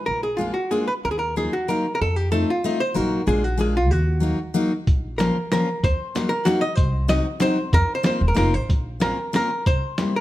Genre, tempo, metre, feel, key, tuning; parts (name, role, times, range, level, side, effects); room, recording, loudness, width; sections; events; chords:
musette waltz; 188 BPM; 3/4; rubato; Eb harmonic minor, Bb minor from 4.9 s; A4 = 444 Hz
archtop guitar, miked and amplified; melody; 0.0-10.2 s; Eb4 to Eb5; -24 LUFS; equal
upright bass; bass; 0.1-9.8 s; Eb1 to F2; -23 LUFS; equal
picked steel-string acoustic guitar; accompaniment; 0.4-10.1 s; F3 to Gb4; -24 LUFS; left 2 dB
lo-fi sampler-style drum kit; drums; 4.9-10.1 s; hi-hat, kick drum, snare drum; -23 LUFS; equal
light reverb; close, detailed microphones; -19 LUFS; side -15 dB against mid
0.0-4.9 A section; 4.9-10.2 B section
0.1 Bb7; 1.0 Ebmadd9; 2.0 F7; 3.0 Ebm/Bb; 3.3 Bb7; 3.9 Ebm; 4.9 Bbm; 5.8 Ebm; 6.8 Cdim; 7.7 F7sus4; 8.7 Bbmadd9; 9.7 C7